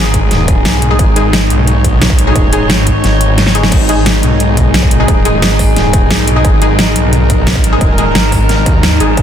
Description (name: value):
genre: dark technical drum and bass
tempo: 176 BPM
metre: 4/4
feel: straight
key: G# minor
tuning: A4 = 440 Hz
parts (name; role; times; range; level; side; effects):
- metallic inharmonic drone; sustained chords; 0.0-9.2 s; G#2 to C#5; -14 LUFS; equal; chorus, built-in reverb, sidechain pumping
- snarling distorted saw bass; bass; 0.0-9.2 s; D#1 to D#2; -13 LUFS; equal; distortion, overdrive
- dubstep drum kit; drums; 0.1-9.2 s; crash cymbal, hi-hat, snare drum; -15 LUFS; equal; none
- electronic kick drum; drums; 0.1-9.2 s; none; -12 LUFS; equal; distortion
- orchestra-hit-like synth stab; stabs; 0.9-9.1 s; G#3 to G#4; -19 LUFS; left 2 dB; built-in reverb, dub echo
room: digital ambience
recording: dense, heavily limited modern master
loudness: -8 LUFS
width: side -9 dB against mid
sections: 0.0-9.2 A section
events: kick drops out 3.0-3.7; drum fill 3.4-3.7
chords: 0.0 G#5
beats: 0.31 0.65 | 0.99 1.33 1.67 2.02 | 2.36 2.70 3.04 3.38 | 3.72 4.06 4.40 4.74 | 5.08 5.42 5.76 6.11 | 6.45 6.79 7.13 7.47 | 7.81 8.15 8.49 8.83 | 9.17